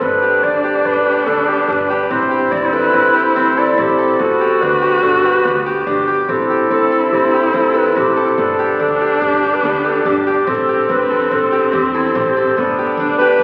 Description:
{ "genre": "contemporary instrumental, chamber music in an uneven meter", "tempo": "143 BPM", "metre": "5/4", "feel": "straight", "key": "G major", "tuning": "A4 = 440 Hz", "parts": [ { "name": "warm clarinet", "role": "melody", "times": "0.0-13.4 s", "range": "E4 to D5", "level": "-19 LUFS", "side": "equal", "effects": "none" }, { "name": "dark viola", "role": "second line", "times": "0.0-13.4 s", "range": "C4 to F#4", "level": "-20 LUFS", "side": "equal", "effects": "none" }, { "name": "Celtic harp", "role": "arpeggios", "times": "0.0-13.4 s", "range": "B3 to A4", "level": "-20 LUFS", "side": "equal", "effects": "none" }, { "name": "upright bass", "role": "bass", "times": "0.0-13.4 s", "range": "G1 to E2", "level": "-36 LUFS", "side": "equal", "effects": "none" } ], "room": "wet concert hall reverb, RT60 2.2 s", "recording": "very old 78 rpm record, vinyl crackle", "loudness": "-15 LUFS", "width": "mono", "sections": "0.0-13.4 A section", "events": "none", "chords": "0.0 G; 2.1 Am7; 4.2 G; 6.3 Am7; 8.4 G; 10.5 Am7; 12.6 G" }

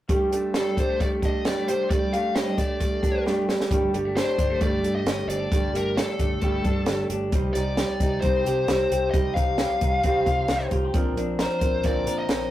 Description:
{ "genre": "jangly indie pop", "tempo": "133 BPM", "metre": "4/4", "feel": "straight", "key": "G minor", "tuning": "A4 = 440 Hz", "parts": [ { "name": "fingerpicked steel-string acoustic guitar", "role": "accompaniment", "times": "0.1-12.5 s", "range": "G2 to C5", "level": "-27 LUFS", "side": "right 2 dB", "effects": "none" }, { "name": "electric guitar through a small old amp", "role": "arpeggios", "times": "0.1-12.5 s", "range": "F3 to Bb4", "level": "-30 LUFS", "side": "left 1 dB", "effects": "none" }, { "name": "compact cocktail drum kit", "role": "drums", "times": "0.1-12.4 s", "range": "hi-hat, kick drum, snare drum", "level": "-26 LUFS", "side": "equal", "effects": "none" }, { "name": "smooth overdriven lead guitar", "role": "melody", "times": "0.6-12.5 s", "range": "A4 to F5", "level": "-27 LUFS", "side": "left 2 dB", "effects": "none" }, { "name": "vintage muted fingered electric bass", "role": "bass", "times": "3.7-12.5 s", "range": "G1 to C3", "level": "-31 LUFS", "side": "equal", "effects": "none" } ], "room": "wet small room ambience, RT60 0.5 s", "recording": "rough rehearsal-room recording, tube saturation", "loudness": "-21 LUFS", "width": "side -13 dB against mid", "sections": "0.1-3.7 A section; 3.7-12.5 B section", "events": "drum fill 3.3-3.7", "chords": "0.1 Gsus2; 7.3 Cm; 10.9 Bbadd9" }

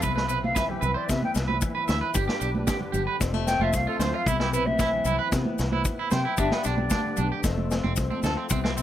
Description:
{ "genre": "highlife guitar band", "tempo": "113 BPM", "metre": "4/4", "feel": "straight", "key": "C major", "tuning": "A4 = 439 Hz", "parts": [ { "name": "fingerpicked acoustic archtop guitar", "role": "accompaniment", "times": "0.0-8.8 s", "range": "F2 to G4", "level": "-33 LUFS", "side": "left 8 dB", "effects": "none" }, { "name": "percussive tonewheel organ", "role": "sustained chords", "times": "0.0-8.8 s", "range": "D4 to E5", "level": "-39 LUFS", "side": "equal", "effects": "slow rotary speaker, overdrive, chorus vibrato" }, { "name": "electric guitar at the edge of break-up", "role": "arpeggios", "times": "0.0-8.8 s", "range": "B3 to E5", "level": "-30 LUFS", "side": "right 5 dB", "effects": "none" }, { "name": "fingered electric bass", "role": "bass", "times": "0.0-8.8 s", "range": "F1 to C3", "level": "-28 LUFS", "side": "equal", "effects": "none" }, { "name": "vintage drum kit", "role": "drums", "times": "0.0-8.8 s", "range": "kick drum, snare drum", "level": "-29 LUFS", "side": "equal", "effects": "none" }, { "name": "maracas", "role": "percussion", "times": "0.0-8.8 s", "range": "none", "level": "-35 LUFS", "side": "left 7 dB", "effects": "none" }, { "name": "silver concert flute", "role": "melody", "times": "0.4-7.2 s", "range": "G4 to G5", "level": "-28 LUFS", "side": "left 1 dB", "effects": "none" }, { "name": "congas", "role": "percussion", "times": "0.4-8.4 s", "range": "none", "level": "-32 LUFS", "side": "right 4 dB", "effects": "none" } ], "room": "little or no reverb", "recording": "none", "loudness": "-23 LUFS", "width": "side -12 dB against mid", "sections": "0.0-8.8 A section", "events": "flute solo 0.0-8.8", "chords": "0.0 Cmaj7; 2.1 G; 3.2 F; 4.3 Cmaj7; 6.4 G; 7.4 F" }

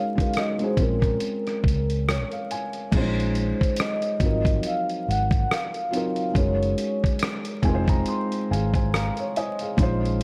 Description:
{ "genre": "lo-fi hip hop", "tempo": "70 BPM", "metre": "4/4", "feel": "swing 57% on 16ths", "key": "Bb minor", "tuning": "A4 = 440 Hz", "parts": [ { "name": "vibraphone with soft mallets", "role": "melody", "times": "0.0-7.2 s", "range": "Bb4 to Gb5", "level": "-30 LUFS", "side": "equal", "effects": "none" }, { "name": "felt-muted upright piano", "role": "accompaniment", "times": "0.0-10.2 s", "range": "F3 to C6", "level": "-29 LUFS", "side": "equal", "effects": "none" }, { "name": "dusty soul sampler-style drum kit", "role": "drums", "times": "0.2-10.2 s", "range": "crash cymbal, hi-hat, kick drum, rim click", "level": "-28 LUFS", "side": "equal", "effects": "none" }, { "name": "vintage muted fingered electric bass", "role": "bass", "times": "0.8-10.2 s", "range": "F1 to Db2", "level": "-28 LUFS", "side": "equal", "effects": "none" } ], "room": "digital ambience", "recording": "vinyl crackle", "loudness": "-24 LUFS", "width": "mono", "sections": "0.0-2.9 A section; 2.9-10.2 B section", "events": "felt piano fill 1.6-2.9, 7.2-9.8", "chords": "0.0 Gb6; 0.8 Bbm9; 2.9 Bbm11; 4.2 Ab13; 6.4 Gb6; 7.6 Fm7" }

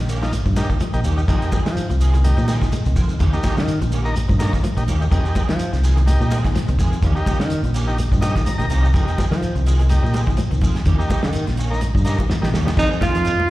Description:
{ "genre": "afrobeat", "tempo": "125 BPM", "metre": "4/4", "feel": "swing 56% on 16ths", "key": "F minor", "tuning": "A4 = 438 Hz", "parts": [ { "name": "electric guitar at the edge of break-up", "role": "arpeggios", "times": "0.0-13.5 s", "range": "Eb3 to Ab3", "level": "-30 LUFS", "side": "left 6 dB", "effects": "analog chorus, slapback echo" }, { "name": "fingered electric bass", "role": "bass", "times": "0.0-13.4 s", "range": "Bb1 to F3", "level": "-18 LUFS", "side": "equal", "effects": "none" }, { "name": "electric guitar at the edge of break-up", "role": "stabs", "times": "0.1-13.2 s", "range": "Eb3 to Ab4", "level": "-31 LUFS", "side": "right 5 dB", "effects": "ensemble chorus, slapback echo" }, { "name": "warm soul drum kit", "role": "drums", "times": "0.1-13.4 s", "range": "crash cymbal, hi-hat, kick drum, snare drum", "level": "-22 LUFS", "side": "equal", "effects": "none" }, { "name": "shekere", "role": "percussion", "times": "0.1-13.4 s", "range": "none", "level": "-30 LUFS", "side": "equal", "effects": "none" }, { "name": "combo organ", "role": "accompaniment", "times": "0.2-12.7 s", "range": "Bb3 to Bb5", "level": "-28 LUFS", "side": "equal", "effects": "slapback echo" }, { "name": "congas", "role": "percussion", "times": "0.2-13.5 s", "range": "none", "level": "-29 LUFS", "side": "right 1 dB", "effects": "none" }, { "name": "breathy alto saxophone", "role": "melody", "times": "12.8-13.5 s", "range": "Eb4 to F4", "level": "-20 LUFS", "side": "right 2 dB", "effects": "slapback echo" }, { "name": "breathy trumpet", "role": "second line", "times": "12.8-13.5 s", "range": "Eb4 to F4", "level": "-24 LUFS", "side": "right 5 dB", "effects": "slapback echo" } ], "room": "little or no reverb", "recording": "live gig heard through the venue's PA, recital hall reverb", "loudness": "-16 LUFS", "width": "side -17 dB against mid", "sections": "0.0-12.8 A section", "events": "transistor combo organ fill 8.0-8.9; drum fill 12.1-12.8", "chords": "0.0 Eb7; 1.3 Fm7; 3.2 Eb7; 5.1 Fm7; 7.0 Eb7; 8.9 Fm7; 10.9 Eb7; 12.8 Fm7" }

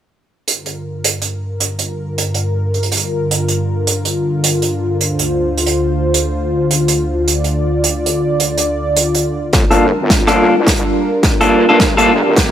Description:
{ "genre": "glitch hop", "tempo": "106 BPM", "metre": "4/4", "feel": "swing 62% on 16ths", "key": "G minor", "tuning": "A4 = 440 Hz", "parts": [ { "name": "warm analog pad", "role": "sustained chords", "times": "0.5-12.5 s", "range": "D2 to D5", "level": "-16 LUFS", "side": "equal", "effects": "chorus, sidechain pumping" }, { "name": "unplugged drum kit", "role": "drums", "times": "0.5-12.5 s", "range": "hi-hat, rim click, snare drum", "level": "-17 LUFS", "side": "right 3 dB", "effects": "none" }, { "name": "wobble bass", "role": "bass", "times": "9.5-12.5 s", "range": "G1 to G2", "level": "-19 LUFS", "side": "equal", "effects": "chorus, overdrive, high-pass filter" }, { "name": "electronic kick drum", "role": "drums", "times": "9.5-12.5 s", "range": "none", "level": "-15 LUFS", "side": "equal", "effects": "distortion" }, { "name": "electric guitar at the edge of break-up", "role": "stabs", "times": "9.7-12.1 s", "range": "Bb3 to A4", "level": "-12 LUFS", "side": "left 1 dB", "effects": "vintage 12-bit sampler grit, sidechain pumping, low-pass filter, tape echo" } ], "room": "light reverb, studio reverb", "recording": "dry, gritty hardware recording", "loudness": "-13 LUFS", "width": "side -10 dB against mid", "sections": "0.5-9.5 A section; 9.5-12.5 B section", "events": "filter sweep on analog synth pad 0.5-9.5; build-up 9.5-12.5; drum fill 9.5-12.5; filter sweep on clean electric guitar 9.5-12.5; filter sweep 9.5-12.5", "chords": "0.5 Gm7; 5.0 Dm7; 9.5 Gm7" }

